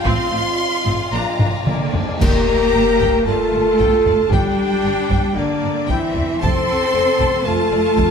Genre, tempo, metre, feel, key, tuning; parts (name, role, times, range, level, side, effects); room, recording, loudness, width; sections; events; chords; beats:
cinematic, epic orchestral film score; 114 BPM; 4/4; straight; G dorian; A4 = 440 Hz
rich symphonic violin section; melody; 0.0-8.1 s; Bb4 to C6; -26 LUFS; left 2 dB
warm studio violin section; second line; 0.0-8.1 s; F4 to C6; -25 LUFS; left 2 dB
clear symphonic viola section; accompaniment; 0.0-8.1 s; Bb3 to A4; -25 LUFS; right 2 dB
warm French horn section; sustained chords; 0.0-8.1 s; C4 to C5; -19 LUFS; left 2 dB
rich symphonic cello section; bass; 0.0-8.1 s; A2 to C4; -24 LUFS; right 4 dB
rich symphonic double bass section; bass; 0.1-8.1 s; F1 to Bb1; -26 LUFS; right 4 dB
taiko ensemble; drums; 0.1-8.1 s; -22 LUFS; equal
clash cymbals and concert bass drum; percussion; 2.2-3.2 s; -27 LUFS; left 1 dB
moderate scoring stage reverb, RT60 1.6 s; -15 LUFS; side -6 dB against mid
0.0-2.2 A section; 2.2-8.1 B section
drum fill 1.4-2.2; band accent 2.2-2.7
0.1 F/A; 1.1 Bb; 2.2 Gm; 6.4 F
| 0.06 0.59 1.12 1.66 | 2.21 2.73 3.26 3.78 | 4.31 4.83 5.36 5.88 | 6.41 6.94 7.46 7.98